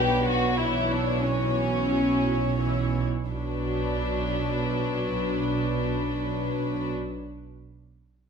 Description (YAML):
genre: quick classical-period movement for symphony orchestra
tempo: 83-96 BPM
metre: 4/4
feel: straight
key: B minor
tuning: A4 = 438 Hz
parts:
  - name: warm studio violin section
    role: melody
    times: 0.0-6.9 s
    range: B4 to C#5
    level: -32 LUFS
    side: left 5 dB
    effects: none
  - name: warm studio violin section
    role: second line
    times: 0.0-6.9 s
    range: C#4 to G4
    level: -28 LUFS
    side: left 2 dB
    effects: none
  - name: warm studio viola section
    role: accompaniment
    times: 0.0-6.9 s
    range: E3 to F#4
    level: -33 LUFS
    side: right 1 dB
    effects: none
  - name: dark studio cello section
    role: bass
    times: 0.0-6.9 s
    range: B2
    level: -31 LUFS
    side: right 4 dB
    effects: none
  - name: dark studio double bass section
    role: bass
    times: 0.0-6.9 s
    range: B1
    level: -32 LUFS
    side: right 5 dB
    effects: none
room: wet recital hall reverb, RT60 1.4 s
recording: none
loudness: -24 LUFS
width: side -6 dB against mid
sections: 0.0-3.3 A section; 3.3-6.1 B section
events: slowing down 0.0-3.3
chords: 0.0 Em/B (rootless); 0.6 F#5/B; 3.3 Bm